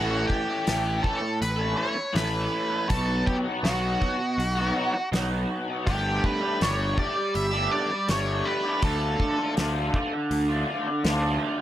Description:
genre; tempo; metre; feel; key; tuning
psychedelic rock; 81 BPM; 4/4; straight; A mixolydian; A4 = 441 Hz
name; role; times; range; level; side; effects
octave-fuzz lead guitar; melody; 0.0-9.5 s; F#4 to E5; -29 LUFS; equal; wah, distortion, tape echo
raw garage guitar; riff; 0.0-11.6 s; A2 to A4; -27 LUFS; equal; overdrive, rotary speaker
fuzz picked electric bass; bass; 0.0-11.4 s; G1 to D2; -29 LUFS; equal; overdrive
damped 70s drum kit; drums; 0.3-11.2 s; hi-hat, kick drum, snare drum; -28 LUFS; equal; none
room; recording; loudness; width
light reverb, studio reverb; none; -23 LUFS; side -12 dB against mid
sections
0.0-11.6 A section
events
none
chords
0.0 Aadd9; 2.9 B; 5.9 Gsus2; 8.8 Dm

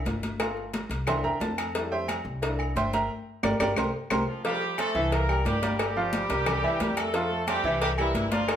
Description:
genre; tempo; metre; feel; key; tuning
latin, salsa; 178 BPM; 4/4; straight; unclear; A4 = 440 Hz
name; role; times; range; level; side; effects
clear upright piano; accompaniment; 0.0-8.6 s; E3 to C6; -30 LUFS; right 1 dB; none
upright bass; bass; 0.0-8.6 s; G1 to F2; -32 LUFS; equal; none
congas; percussion; 0.1-8.6 s; none; -34 LUFS; left 2 dB; none
cowbell; percussion; 0.1-8.6 s; none; -33 LUFS; left 2 dB; none
timbales and agogo bells; percussion; 0.1-8.6 s; none; -35 LUFS; right 3 dB; none
claves; percussion; 0.4-8.6 s; none; -37 LUFS; left 4 dB; none
bright horn section; melody; 4.3-8.6 s; E3 to Bb4; -29 LUFS; right 1 dB; none
room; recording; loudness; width
wet large studio reverb, RT60 0.9 s; band playing live in one room; -25 LUFS; side -9 dB against mid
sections
0.0-4.4 A section; 4.4-8.6 B section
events
upright piano solo 0.0-4.4; drum fill 3.1-4.4; band accent 3.1-4.4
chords
0.4 Gm7; 1.1 C7; 1.8 Fmaj9; 2.4 C7; 3.1 Gm; 3.8 C5; 4.4 Fmaj9; 5.1 C7; 5.8 Gm7; 6.5 C7; 7.1 Fmaj9; 7.8 C7

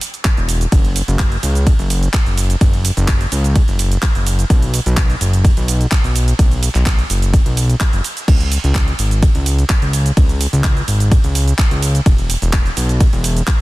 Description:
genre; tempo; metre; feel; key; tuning
progressive house; 127 BPM; 4/4; straight; C# minor; A4 = 439 Hz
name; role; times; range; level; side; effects
house drum kit; drums; 0.0-13.6 s; crash cymbal, handclaps, hi-hat, ride cymbal, shaker; -22 LUFS; right 2 dB; soft clipping on snare
electronic kick drum; drums; 0.2-13.6 s; none; -13 LUFS; equal; none
fat analog bass; bass; 0.4-13.4 s; E1 to C#2; -15 LUFS; equal; tube saturation, sidechain pumping
room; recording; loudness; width
little or no reverb; dense, heavily limited modern master; -12 LUFS; side -19 dB against mid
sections
0.0-13.6 A section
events
none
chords
none

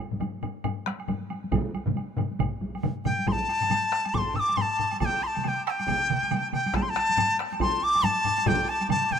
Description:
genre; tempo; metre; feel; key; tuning
japanese traditional, taiko drum ensemble; 138 BPM; 4/4; swing 60% on 16ths; unclear; A4 = 443 Hz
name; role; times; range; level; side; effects
taiko ensemble; percussion; 0.1-9.0 s; none; -34 LUFS; equal; none
taiko ensemble; percussion; 0.1-9.2 s; none; -32 LUFS; left 4 dB; none
woodblock; percussion; 0.2-9.2 s; none; -39 LUFS; right 7 dB; none
taiko ensemble; percussion; 1.5-9.2 s; none; -30 LUFS; right 6 dB; none
taiko ensemble; percussion; 1.5-8.6 s; none; -32 LUFS; right 1 dB; none
bright dizi; melody; 3.0-9.2 s; G5 to E6; -24 LUFS; left 1 dB; none
room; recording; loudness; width
light reverb; minimal, uncompressed stereo recording; -24 LUFS; side -7 dB against mid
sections
0.0-3.3 A section; 3.3-9.2 B section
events
speeding up 0.0-9.2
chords
none

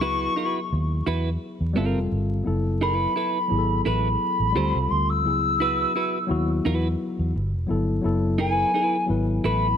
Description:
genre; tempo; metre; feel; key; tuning
R&B; 86 BPM; 4/4; swing 54% on 16ths; F# dorian; A4 = 438 Hz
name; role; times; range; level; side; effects
mellow hollow silver concert flute; melody; 0.0-9.8 s; G#5 to E6; -24 LUFS; left 1 dB; none
clean electric guitar; second line; 0.0-9.7 s; C4 to C5; -29 LUFS; right 4 dB; wide subtle chorus
tine electric piano; accompaniment; 0.0-9.8 s; F#3 to B4; -28 LUFS; left 3 dB; none
vintage muted fingered electric bass; bass; 0.0-9.7 s; F1 to E2; -25 LUFS; equal; none
room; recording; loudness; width
light reverb; vinyl crackle; -21 LUFS; side -8 dB against mid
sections
0.0-9.8 A section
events
none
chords
0.0 C#m11; 1.7 Gm11; 2.4 F#m11; 4.5 Dm7; 5.2 C#m11; 7.3 Gsus2; 8.0 F#m11

